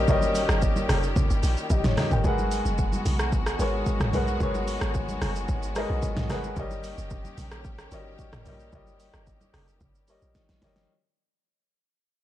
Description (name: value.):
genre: amapiano.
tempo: 111 BPM.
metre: 4/4.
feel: straight.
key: unclear.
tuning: A4 = 438 Hz.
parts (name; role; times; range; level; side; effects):
warm baby grand piano; accompaniment; 0.0-10.9 s; G3 to G5; -30 LUFS; left 2 dB; none.
clear studio string section; sustained chords; 0.0-10.9 s; D#3 to G4; -35 LUFS; left 1 dB; none.
deep log drum bass; bass; 0.0-10.9 s; F#1 to B1; -29 LUFS; equal; none.
deep house drum kit; drums; 0.1-10.9 s; hi-hat, kick drum, rim click, shaker, snare drum, toms; -28 LUFS; equal; none.
congas; percussion; 0.1-10.8 s; none; -34 LUFS; right 1 dB; none.
room: little or no reverb.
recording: dry, gritty hardware recording, cassette tape.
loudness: -23 LUFS.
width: side -13 dB against mid.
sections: 0.0-10.9 A section.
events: drop 0.0-10.9; fade-out 0.0-10.9; drum fill 10.4-10.9.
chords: 0.0 D#7; 2.2 G#m7; 6.6 D#7.